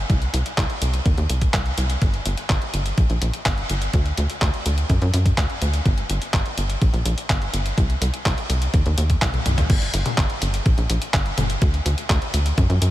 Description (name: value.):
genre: italo disco.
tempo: 125 BPM.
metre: 4/4.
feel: straight.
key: G harmonic minor.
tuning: A4 = 440 Hz.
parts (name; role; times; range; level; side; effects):
tight sequencer bass; bass; 0.0-12.9 s; G1 to F#2; -22 LUFS; equal; tube saturation, ping-pong delay.
detuned 8-bit digital drum machine; drums; 0.1-12.9 s; crash cymbal, handclaps, hi-hat, toms; -25 LUFS; equal; none.
electronic kick drum; drums; 0.1-12.7 s; none; -20 LUFS; equal; none.
room: light reverb.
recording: none.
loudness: -19 LUFS.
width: side -15 dB against mid.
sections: 0.0-9.7 A section; 9.7-12.9 B section.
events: drum fill 9.3-9.7.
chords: none.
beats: | 0.10 0.58 1.06 1.54 | 2.02 2.50 2.98 3.46 | 3.94 4.42 4.90 5.38 | 5.86 6.34 6.82 7.30 | 7.78 8.26 8.74 9.22 | 9.70 10.18 10.66 11.14 | 11.62 12.10 12.58.